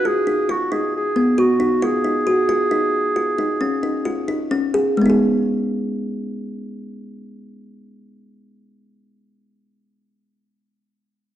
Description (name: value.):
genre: contemporary instrumental, contemporary.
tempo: 132 BPM.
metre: 7/4.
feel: straight.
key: G# dorian.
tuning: A4 = 440 Hz.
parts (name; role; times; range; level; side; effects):
warm clarinet; melody; 0.0-4.5 s; F#4 to G#4; -21 LUFS; right 1 dB; none.
kalimba; arpeggios; 0.0-9.7 s; G#3 to G#4; -19 LUFS; equal; none.
room: wet recital hall reverb, RT60 1.4 s.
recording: dark, warm production.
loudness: -17 LUFS.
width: side -12 dB against mid.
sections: 0.0-5.0 A section; 5.0-8.2 B section.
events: slowing down 1.4-5.0.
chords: 0.0 G#7(no3); 1.8 G#5; 5.0 G#m.